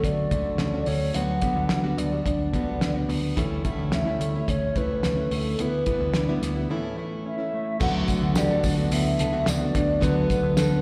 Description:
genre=jangly indie pop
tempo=108 BPM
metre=4/4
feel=straight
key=D major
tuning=A4 = 440 Hz
part: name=hollow clarinet-like synth lead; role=melody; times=0.0-10.8 s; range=A4 to F#5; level=-31 LUFS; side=equal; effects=chorus, slapback echo
part: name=fingerpicked plugged-in steel-string acoustic guitar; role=accompaniment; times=0.0-10.8 s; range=A2 to F#4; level=-33 LUFS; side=equal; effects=none
part: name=mellow electric guitar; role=arpeggios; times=0.0-10.8 s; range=E3 to A4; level=-31 LUFS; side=equal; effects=none
part: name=vintage muted picked electric bass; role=bass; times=0.0-10.8 s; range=C#2 to D2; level=-30 LUFS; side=equal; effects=none
part: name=cloth-damped thuddy drum kit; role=drums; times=0.0-10.7 s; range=crash cymbal, hi-hat, kick drum, snare drum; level=-30 LUFS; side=equal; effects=none
part: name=tambourine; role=percussion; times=7.8-10.7 s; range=none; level=-42 LUFS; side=equal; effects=none
room=little or no reverb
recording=live gig heard through the venue's PA, recital hall reverb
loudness=-25 LUFS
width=mono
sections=0.0-7.8 A section; 7.8-10.8 B section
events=break 6.7-7.8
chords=0.0 Dmaj7; 1.1 Gmaj7/D; 3.4 A7/D; 5.6 Em7/D; 6.7 A; 7.8 D6

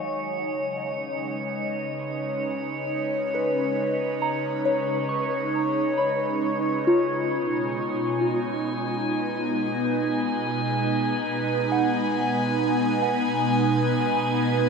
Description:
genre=ambient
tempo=69 BPM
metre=4/4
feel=straight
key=G# dorian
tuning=A4 = 438 Hz
part: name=airy breathy pad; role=sustained chords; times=0.0-14.7 s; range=B2 to G#5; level=-26 LUFS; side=right 2 dB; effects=chorus, phaser
part: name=soft synth bell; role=arpeggios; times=0.0-14.7 s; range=E#4 to C#6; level=-28 LUFS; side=left 1 dB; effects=chorus, phaser, tape echo
part: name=organ-like drone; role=drone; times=0.0-14.7 s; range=G#3 to D#4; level=-33 LUFS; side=equal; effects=ensemble chorus, built-in reverb, phaser
part: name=drifting glass-harmonics texture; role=texture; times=0.0-14.7 s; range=C#5 to G#5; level=-29 LUFS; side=left 1 dB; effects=chorus, built-in reverb
room=wet huge ambient reverb, RT60 7.7 s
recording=none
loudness=-23 LUFS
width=side -5 dB against mid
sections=0.0-14.7 A section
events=fade-in on analog synth pad 0.0-14.7; fade-in on synth drone 0.0-14.7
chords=0.3 C#7(no3); 7.3 G#m7/B

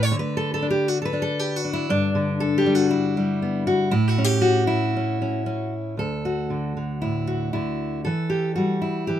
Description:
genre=folk, solo fingerstyle acoustic guitar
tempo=117 BPM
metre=4/4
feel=straight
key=D major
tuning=A4 = 439 Hz
part: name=fingerpicked steel-string acoustic guitar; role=solo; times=0.0-9.2 s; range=D2 to C#5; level=-21 LUFS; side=equal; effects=none
room=light reverb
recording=minimal, uncompressed stereo recording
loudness=-21 LUFS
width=side -10 dB against mid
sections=0.0-6.0 A section; 6.0-9.2 B section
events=none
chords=0.0 D5/A; 1.9 Gsus2; 3.9 A; 6.0 Dadd9; 8.1 Em

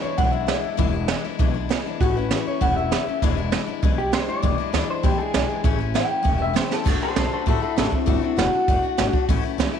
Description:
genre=rockabilly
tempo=198 BPM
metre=4/4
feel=straight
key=A major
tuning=A4 = 440 Hz
part: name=electric guitar through a small old amp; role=melody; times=0.0-9.3 s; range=C4 to G5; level=-25 LUFS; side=left 2 dB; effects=spring reverb, tape echo
part: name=picked steel-string acoustic guitar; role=accompaniment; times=0.0-9.8 s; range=E2 to F#4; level=-27 LUFS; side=left 14 dB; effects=none
part: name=upright bass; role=bass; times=0.0-9.8 s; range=E1 to D2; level=-27 LUFS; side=equal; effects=none
part: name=jazz brush drum kit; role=drums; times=0.2-9.7 s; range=crash cymbal, hi-hat, kick drum, snare drum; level=-23 LUFS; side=right 3 dB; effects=none
room=light reverb, studio ambience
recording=1960s-style stereo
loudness=-19 LUFS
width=side -8 dB against mid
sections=0.0-6.9 A section; 6.9-9.8 B section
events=drum fill 6.7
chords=0.0 E7; 2.0 A; 3.2 E7; 5.6 A; 6.9 D; 9.3 A

